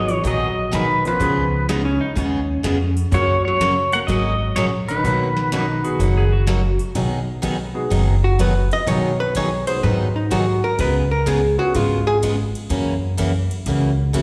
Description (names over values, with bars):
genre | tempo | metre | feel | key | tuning
country, western swing | 125 BPM | 4/4 | swing 67% on 8ths | B major | A4 = 442 Hz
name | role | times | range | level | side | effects
pedal steel guitar | melody | 0.0-6.4 s | B4 to F#5 | -23 LUFS | equal | slapback echo
hollow-body jazz guitar | second line | 0.0-12.2 s | D#3 to D#5 | -25 LUFS | equal | slapback echo
clear upright piano | accompaniment | 0.0-11.7 s | G#3 to B4 | -31 LUFS | equal | slapback echo
upright bass | bass | 0.0-14.2 s | F#1 to G#2 | -23 LUFS | equal | none
booming analog drum machine | drums | 0.1-14.2 s | hi-hat, kick drum, ride cymbal, snare drum | -33 LUFS | equal | none
picked steel-string acoustic guitar | accompaniment | 0.2-14.2 s | B2 to G#4 | -27 LUFS | equal | slapback echo
clean lap steel guitar | second line | 1.7-6.9 s | C#4 to G#4 | -27 LUFS | equal | slapback echo
room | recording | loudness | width
moderate lush hall reverb, RT60 1.7 s, digital ambience | live gig heard through the venue's PA, recital hall reverb | -19 LUFS | mono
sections
0.0-7.0 A section; 7.0-14.2 B section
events
hollow-body jazz guitar solo 7.0-14.2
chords
0.0 B6; 1.2 C#7; 3.1 F#; 5.0 Bmaj7; 7.0 B6; 8.9 G#m7/B; 10.8 C#7; 12.7 F#7